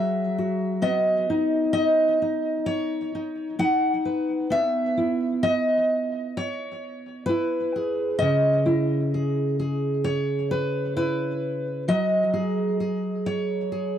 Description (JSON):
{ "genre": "folk, solo fingerstyle acoustic guitar", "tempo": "65 BPM", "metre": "4/4", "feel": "straight", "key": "B major", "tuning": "A4 = 445 Hz", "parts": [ { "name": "fingerpicked steel-string acoustic guitar", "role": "solo", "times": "0.0-14.0 s", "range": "C#3 to F#5", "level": "-22 LUFS", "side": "equal", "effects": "tape echo" } ], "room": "small room reverb", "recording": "dry, close 1970s-style studio recording", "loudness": "-22 LUFS", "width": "side -10 dB against mid", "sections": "0.0-14.0 A section", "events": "none", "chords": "0.0 F#sus2; 0.8 B; 4.5 E/B; 8.2 C#m7; 11.9 F#sus2" }